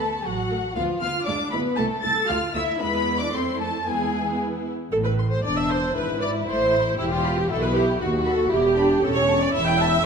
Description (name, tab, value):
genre	quick classical-period movement for string orchestra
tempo	117 BPM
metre	2/4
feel	straight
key	A minor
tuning	A4 = 440 Hz
part	warm symphonic violin section	melody	0.0-9.9 s	F5 to A6	-28 LUFS	left 2 dB	none
part	warm symphonic violin section	second line	0.0-10.0 s	C#4 to A5	-27 LUFS	left 3 dB	none
part	rich symphonic viola section	accompaniment	0.0-10.1 s	G#3 to G5	-24 LUFS	right 2 dB	none
part	rich symphonic cello section	bass	0.0-10.0 s	D#2 to A4	-30 LUFS	right 2 dB	none
part	rich symphonic double bass section	bass	0.0-10.0 s	E1 to F2	-29 LUFS	right 2 dB	none
room	wet recital hall reverb, RT60 1.7 s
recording	minimal, uncompressed stereo recording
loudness	-20 LUFS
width	side -6 dB against mid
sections	0.0-4.9 A section; 4.9-10.1 B section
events	none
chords	0.0 D; 0.8 Bdim/D; 1.3 E7/D; 1.8 Am/C; 2.3 Dmadd9; 2.8 E; 3.3 Fmaj7; 3.9 E; 4.9 Am; 6.0 E7/G#; 6.5 Am; 7.0 Em; 8.0 B7/D# (rootless); 8.5 Em; 9.0 A/E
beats	0.25 | 0.76 1.26 | 1.77 2.29 | 2.81 3.33 | 3.86 4.39 | 4.91 5.43 | 5.95 6.47 | 6.99 7.50 | 8.01 8.52 | 9.03 9.54